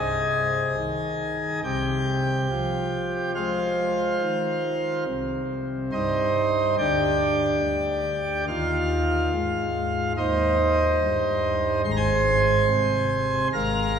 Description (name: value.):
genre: classical, chorale-style piece for pipe organ.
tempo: 71 BPM.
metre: 4/4.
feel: rubato.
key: C minor.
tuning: A4 = 444 Hz.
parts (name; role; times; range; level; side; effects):
pipe organ, principal chorus; solo; 0.0-14.0 s; Ab1 to C6; -22 LUFS; equal; none.
room: wet church reverb, RT60 3.7 s.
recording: minimal, uncompressed stereo recording.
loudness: -22 LUFS.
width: side -7 dB against mid.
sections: 0.0-14.0 A section.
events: none.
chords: 0.0 Ab/C; 1.6 Fm/C; 5.1 Cm; 6.8 G5/D; 8.5 Cm/Eb; 11.8 Ab.